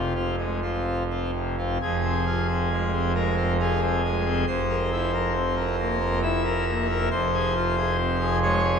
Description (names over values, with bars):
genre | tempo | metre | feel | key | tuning
classical, chorale-style piece for pipe organ | 62-70 BPM | 3/4 | rubato | F minor | A4 = 440 Hz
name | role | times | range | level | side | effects
pipe organ, full organ | solo | 0.0-8.8 s | F1 to E5 | -22 LUFS | equal | none
room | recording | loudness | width
wet cathedral reverb, RT60 4.6 s | minimal, uncompressed stereo recording | -22 LUFS | side -6 dB against mid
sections
0.0-1.8 A section; 1.8-8.8 B section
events
none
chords
0.0 Fm; 4.5 C7/F; 7.1 Fm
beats
0.87 | 1.81 2.72 3.60 | 4.48 5.35 6.23 | 7.12 7.99